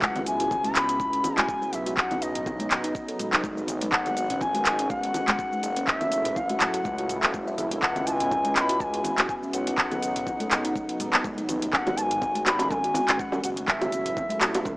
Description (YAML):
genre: afro house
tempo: 123 BPM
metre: 4/4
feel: swing 55% on 16ths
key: C# minor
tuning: A4 = 441 Hz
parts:
  - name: bright reedy bansuri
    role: melody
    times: 0.0-14.6 s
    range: D#5 to C#6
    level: -28 LUFS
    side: left 1 dB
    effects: analog delay
  - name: warm analog pad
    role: sustained chords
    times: 0.0-14.8 s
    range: C#3 to F#4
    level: -34 LUFS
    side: equal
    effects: chorus, sidechain pumping
  - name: smooth synth bass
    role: bass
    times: 0.0-14.8 s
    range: E1 to C#2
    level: -35 LUFS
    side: equal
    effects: sidechain pumping
  - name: afro-pop drum kit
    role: drums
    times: 0.0-14.8 s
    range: handclaps, hi-hat, shaker, toms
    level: -25 LUFS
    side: equal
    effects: none
  - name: electronic kick drum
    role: drums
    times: 0.0-14.8 s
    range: none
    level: -38 LUFS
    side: equal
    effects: none
  - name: congas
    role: percussion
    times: 0.1-14.8 s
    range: none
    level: -35 LUFS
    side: equal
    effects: none
  - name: buzzing kalimba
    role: arpeggios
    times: 0.2-14.6 s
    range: F#3 to E5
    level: -33 LUFS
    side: equal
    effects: vintage 12-bit sampler grit, sidechain pumping, analog delay
  - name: bongos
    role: percussion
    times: 11.7-14.8 s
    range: none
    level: -29 LUFS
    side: right 1 dB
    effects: none
room: light reverb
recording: dry, gritty hardware recording, small speaker sound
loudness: -23 LUFS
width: side -21 dB against mid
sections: 0.0-14.8 A section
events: none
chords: 0.0 C#m7; 2.0 Badd9; 3.9 G#m7; 5.9 F#m7; 7.8 C#m7; 9.8 Badd9; 11.7 G#m7; 13.7 F#m7